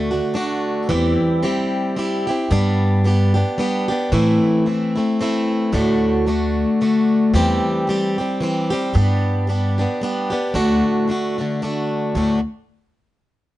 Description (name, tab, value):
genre	celtic folk, Celtic waltz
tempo	112 BPM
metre	3/4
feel	swing 55% on 8ths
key	D mixolydian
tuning	A4 = 441 Hz
part	picked plugged-in swing-style acoustic guitar	accompaniment	0.0-12.4 s	D2 to G4	-18 LUFS	equal	none
part	upright bass	bass	0.0-12.4 s	D2 to A2	-19 LUFS	equal	none
room	light reverb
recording	dark, warm production, nothing above 10.5 kHz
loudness	-17 LUFS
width	side -15 dB against mid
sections	0.0-12.1 A section; 12.1-13.6 B section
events	none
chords	0.0 D; 0.9 C/E; 2.5 G; 4.1 Am; 5.7 D; 7.3 C/E; 8.9 G; 10.5 D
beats	0.35 | 0.89 1.43 1.97 | 2.50 3.04 3.58 | 4.12 4.66 5.19 | 5.73 6.26 6.80 | 7.34 7.87 8.41 | 8.94 9.48 10.01 | 10.55 11.08 11.61 | 12.15